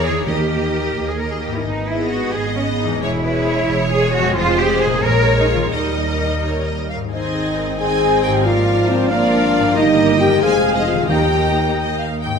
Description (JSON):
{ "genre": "classical, dramatic, fast romantic movement for symphony orchestra", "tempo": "89 BPM (dotted quarters)", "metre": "6/8", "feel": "straight", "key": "Ab major from 4.4 s", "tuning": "A4 = 440 Hz", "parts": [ { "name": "rich symphonic violin section", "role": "melody", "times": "0.0-11.8 s", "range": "C5 to Ab5", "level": "-27 LUFS", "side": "left 2 dB", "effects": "none" }, { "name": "rich symphonic violin section", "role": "second line", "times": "0.0-12.4 s", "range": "Bb4 to Bb5", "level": "-25 LUFS", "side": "left 1 dB", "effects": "none" }, { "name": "rich symphonic viola section", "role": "accompaniment", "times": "0.0-12.2 s", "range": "E3 to A#4", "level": "-24 LUFS", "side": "right 1 dB", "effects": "none" }, { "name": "concert harp", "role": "arpeggios", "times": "0.0-12.4 s", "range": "E2 to Eb5", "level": "-26 LUFS", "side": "left 7 dB", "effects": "none" }, { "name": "rich symphonic cello section", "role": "bass", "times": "0.0-12.2 s", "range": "Eb2 to A#4", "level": "-23 LUFS", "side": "right 2 dB", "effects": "none" }, { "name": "rich symphonic double bass section", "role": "bass", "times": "0.0-12.2 s", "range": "E1 to E2", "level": "-24 LUFS", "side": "right 3 dB", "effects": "none" }, { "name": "timpani", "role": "percussion", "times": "0.3-0.9, 11.1-11.7 s", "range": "D#3", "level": "-25 LUFS", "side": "right 1 dB", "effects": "none" }, { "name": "clear clarinet", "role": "second line", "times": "7.1-12.1 s", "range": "Ab4 to G5", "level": "-24 LUFS", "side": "left 1 dB", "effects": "none" }, { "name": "mellow hollow small flute group", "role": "second line", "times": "7.1-11.8 s", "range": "C5 to Ab5", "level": "-25 LUFS", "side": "right 5 dB", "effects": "none" }, { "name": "dark French horn section", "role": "sustained chords", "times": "7.1-11.7 s", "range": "C4 to Ab4", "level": "-18 LUFS", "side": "left 2 dB", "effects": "none" }, { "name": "warm trombone section", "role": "sustained chords", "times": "7.1-12.2 s", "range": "C3 to C4", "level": "-25 LUFS", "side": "right 2 dB", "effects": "none" } ], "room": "wet recital hall reverb, RT60 1.6 s", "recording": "none", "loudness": "-15 LUFS", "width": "side -6 dB against mid", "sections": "0.0-7.1 A section; 7.1-12.4 B section", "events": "none", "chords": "0.3 D#; 1.7 G#m; 3.0 C#m/E; 4.4 Fm; 5.0 Bbm7; 5.7 Eb; 7.1 Ab; 8.5 Bb7/Ab; 9.8 Eb/G; 10.4 Fm; 11.1 Eb" }